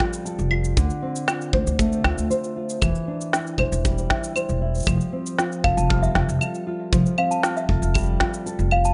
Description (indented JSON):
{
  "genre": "folktronica",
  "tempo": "117 BPM",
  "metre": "4/4",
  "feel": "straight",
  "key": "F major",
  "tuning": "A4 = 442 Hz",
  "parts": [
    { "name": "nylon-string guitar", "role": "arpeggios", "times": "0.0-8.9 s", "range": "D3 to C5", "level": "-28 LUFS", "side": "equal", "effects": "tape echo" },
    { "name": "electronic snare drum, cabasa and claves", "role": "drums", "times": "0.0-8.9 s", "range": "none", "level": "-29 LUFS", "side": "equal", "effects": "none" },
    { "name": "kick drum", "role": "drums", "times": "0.0-8.3 s", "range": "none", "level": "-27 LUFS", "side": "equal", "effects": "none" },
    { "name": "upright bass", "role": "bass", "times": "0.4-8.9 s", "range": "E1 to D2", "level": "-25 LUFS", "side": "equal", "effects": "none" },
    { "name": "toy piano", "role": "second line", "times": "5.6-8.9 s", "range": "E5 to F6", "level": "-27 LUFS", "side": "equal", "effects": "tape echo" }
  ],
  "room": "light reverb",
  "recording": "nothing above 10.4 kHz",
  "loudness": "-23 LUFS",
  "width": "mono",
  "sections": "0.0-8.9 A section",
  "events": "none",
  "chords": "0.0 Fadd9; 0.8 Dm7; 2.8 Cadd9/E; 4.9 Fadd9"
}